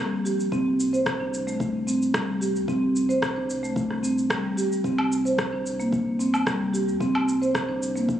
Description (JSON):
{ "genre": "organic downtempo", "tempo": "111 BPM", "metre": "4/4", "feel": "straight", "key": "unclear", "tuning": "A4 = 440 Hz", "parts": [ { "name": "marimba with soft mallets", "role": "arpeggios", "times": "0.0-8.1 s", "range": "G3 to C5", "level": "-23 LUFS", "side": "equal", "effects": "digital delay" }, { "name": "warm sub bass", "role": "bass", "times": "0.0-8.2 s", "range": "G1 to F2", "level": "-40 LUFS", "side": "equal", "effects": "none" }, { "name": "electronic cabasa, rim click and woodblock", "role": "drums", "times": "0.3-8.2 s", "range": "none", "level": "-30 LUFS", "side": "equal", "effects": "none" }, { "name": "electronic kick drum", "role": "drums", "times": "0.5-8.2 s", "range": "none", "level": "-33 LUFS", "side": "left 1 dB", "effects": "none" } ], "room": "moderate echo chamber reverb, RT60 2.3 s", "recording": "recorded on a phone in the room, club reverb, nothing above 10.8 kHz", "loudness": "-22 LUFS", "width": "side -11 dB against mid", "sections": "0.0-8.2 A section", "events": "none", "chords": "0.0 C7(no3) (rootless); 0.5 N.C." }